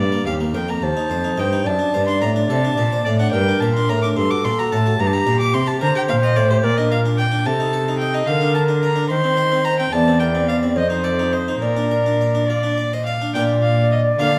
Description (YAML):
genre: classical, baroque-style sonata movement with continuo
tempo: 72 BPM (dotted quarters)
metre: 6/8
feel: straight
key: G minor, Bb major from 6.6 s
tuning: A4 = 440 Hz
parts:
  - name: rich violin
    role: melody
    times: 0.0-14.4 s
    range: Bb4 to D6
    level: -26 LUFS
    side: equal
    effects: none
  - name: harpsichord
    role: accompaniment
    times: 0.0-14.4 s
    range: Eb2 to G5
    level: -26 LUFS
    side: equal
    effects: none
  - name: dark cello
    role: bass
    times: 0.0-14.4 s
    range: Eb2 to Eb3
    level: -24 LUFS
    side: equal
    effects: none
  - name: baroque flute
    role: second line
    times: 0.8-14.4 s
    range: G4 to D5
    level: -23 LUFS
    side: equal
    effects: none
room: wet recital hall reverb, RT60 1.3 s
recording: none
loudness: -19 LUFS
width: mono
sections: 0.0-13.3 A section; 13.3-14.4 B section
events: none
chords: 0.0 Gm; 0.8 Cm/Eb; 1.7 D7/F#; 3.3 Gm; 4.2 D/G; 5.0 Gm; 6.6 Bb; 7.5 Adim/C; 8.3 Bb/D; 9.1 Cm/Eb; 9.9 C7/E; 10.8 F7; 11.6 Bb